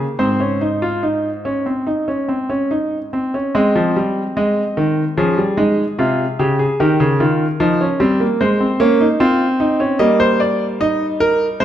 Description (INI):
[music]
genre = classical, baroque-style 3-part fugue for grand piano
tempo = 73 BPM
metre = 4/4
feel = uneven beats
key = Ab major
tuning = A4 = 439 Hz
[part]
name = clear concert grand piano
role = solo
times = 0.0-11.6 s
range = Ab2 to Eb5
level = -14 LUFS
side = equal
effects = none
[sound]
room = wet recital hall reverb, RT60 1.8 s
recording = none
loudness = -14 LUFS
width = side -11 dB against mid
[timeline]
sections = 0.0-3.6 A section; 3.6-11.6 B section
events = none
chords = 0.2 Ab; 5.2 Db/F; 6.8 Eb7; 8.4 Ab; 10.0 Eb/G